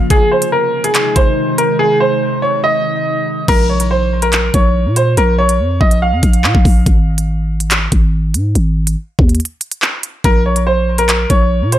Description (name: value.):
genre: hip hop, drill.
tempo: 142 BPM.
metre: 4/4.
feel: half-time.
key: Bb minor.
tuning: A4 = 444 Hz.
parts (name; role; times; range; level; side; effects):
bright upright piano; melody; 0.0-6.8, 10.2-11.8 s; Ab4 to F5; -15 LUFS; right 1 dB; low-pass filter, ping-pong delay.
glassy FM pad; sustained chords; 0.0-3.4 s; C3 to Eb4; -21 LUFS; left 1 dB; ensemble chorus, built-in reverb, low-pass filter.
drill drum kit; drums; 0.1-11.8 s; crash cymbal, handclaps, hi-hat, kick drum; -13 LUFS; equal; none.
growling 808-style bass; bass; 3.5-11.8 s; Ab1 to Bb2; -14 LUFS; equal; none.
room: light reverb, digital ambience.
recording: none.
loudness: -11 LUFS.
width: side -12 dB against mid.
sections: 0.0-3.5 A section; 3.5-11.8 B section.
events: break 6.9-10.2.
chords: 0.1 Ab; 3.5 Bbm; 6.9 Ab5; 10.2 Bbm.